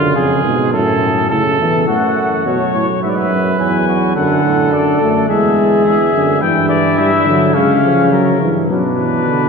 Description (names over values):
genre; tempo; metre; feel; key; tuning
classical, imitative canzona for brass ensemble; 105 BPM; 4/4; straight; F# minor, B minor from 6.4 s; A4 = 440 Hz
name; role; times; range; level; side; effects
warm trumpet; second line; 0.0-9.5 s; C#4 to C#5; -18 LUFS; right 3 dB; none
warm trombone; accompaniment; 0.0-9.5 s; A2 to A3; -16 LUFS; equal; none
mellow euphonium; bass; 0.0-9.5 s; E2 to D3; -17 LUFS; right 2 dB; none
warm trumpet; melody; 1.9-9.5 s; A#4 to G#5; -18 LUFS; left 8 dB; none
room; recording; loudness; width
wet cathedral reverb, RT60 4.4 s; heard from further back in the room; -11 LUFS; side -5 dB against mid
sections
0.0-1.9 A section; 1.9-9.5 B section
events
none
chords
0.0 C#; 0.7 F#m; 3.0 E; 4.2 D/F#; 5.3 E9; 6.4 Em9/G; 7.5 C#; 8.1 F#/C#; 8.7 Bm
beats
0.17 0.73 1.31 | 1.88 2.46 3.03 3.60 | 4.17 4.73 5.29 5.85 | 6.42 6.98 7.55 8.12 | 8.70 9.29